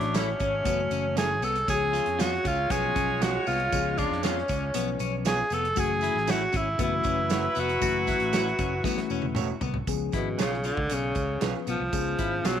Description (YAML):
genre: uptempo 1960s-style soul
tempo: 117 BPM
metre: 4/4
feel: straight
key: F# minor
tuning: A4 = 440 Hz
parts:
  - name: breathy tenor saxophone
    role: melody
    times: 0.0-12.6 s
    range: B2 to A4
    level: -28 LUFS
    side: right 1 dB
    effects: tape echo
  - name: warm horn section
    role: second line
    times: 0.0-9.6 s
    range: F#3 to C#5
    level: -34 LUFS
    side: left 1 dB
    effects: none
  - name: reed electric piano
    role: accompaniment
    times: 0.0-12.6 s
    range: E3 to B4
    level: -34 LUFS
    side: left 12 dB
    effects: none
  - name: clean electric guitar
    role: riff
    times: 0.0-12.6 s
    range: B3 to F#4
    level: -35 LUFS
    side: left 12 dB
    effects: none
  - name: fingered electric bass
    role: bass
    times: 0.0-12.6 s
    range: E1 to E#2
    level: -33 LUFS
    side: right 1 dB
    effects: none
  - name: natural country drum kit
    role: drums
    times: 0.0-12.6 s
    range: hi-hat, kick drum, snare drum, toms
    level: -32 LUFS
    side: right 2 dB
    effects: none
  - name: electric guitar through a small old amp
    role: stabs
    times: 0.1-12.6 s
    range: A3 to C#5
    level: -36 LUFS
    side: right 12 dB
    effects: none
  - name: tambourine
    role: percussion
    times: 0.1-12.6 s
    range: none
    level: -42 LUFS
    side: right 19 dB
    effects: none
room: moderate spring reverb, RT60 2.3 s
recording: 1960s-style stereo with parts hard left and right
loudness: -24 LUFS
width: side -9 dB against mid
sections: 0.0-9.9 A section; 9.9-12.6 B section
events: drum fill 8.8-9.9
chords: 0.0 F#m7; 1.7 C#7; 5.8 F#m7; 9.9 C#7